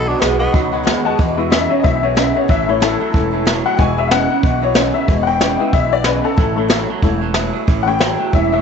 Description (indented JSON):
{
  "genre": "rockabilly",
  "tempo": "185 BPM",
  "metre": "4/4",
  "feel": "swing 59% on 8ths",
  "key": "E major",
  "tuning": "A4 = 440 Hz",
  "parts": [
    { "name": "raspy tenor saxophone", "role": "melody", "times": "0.0-0.5 s", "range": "B3 to D4", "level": "-22 LUFS", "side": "equal", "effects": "none" },
    { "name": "picked swing-style acoustic guitar", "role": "accompaniment", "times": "0.0-8.6 s", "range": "E2 to F#4", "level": "-25 LUFS", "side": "left 11 dB", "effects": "none" },
    { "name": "electric guitar through a small old amp", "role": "riff", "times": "0.0-8.6 s", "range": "E2 to G#3", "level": "-20 LUFS", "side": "right 16 dB", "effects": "phaser" },
    { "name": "upright bass", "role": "bass", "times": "0.0-8.6 s", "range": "E1 to E2", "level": "-22 LUFS", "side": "right 1 dB", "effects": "none" },
    { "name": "honky-tonk upright piano", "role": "accompaniment", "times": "0.1-8.6 s", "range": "G#3 to B5", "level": "-18 LUFS", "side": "left 10 dB", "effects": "none" },
    { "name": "jazz brush drum kit", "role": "drums", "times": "0.2-8.4 s", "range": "hi-hat, kick drum, snare drum", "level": "-18 LUFS", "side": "equal", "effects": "none" }
  ],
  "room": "light reverb, small room ambience",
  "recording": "1960s-style stereo with parts hard left and right, nothing above 7.9 kHz",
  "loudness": "-13 LUFS",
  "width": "side -6 dB against mid",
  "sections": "0.0-1.2 A section; 1.2-8.6 B section",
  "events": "honky-tonk piano solo 1.2-8.6",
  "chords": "0.0 B; 1.2 E; 2.5 A; 3.8 E; 6.4 A"
}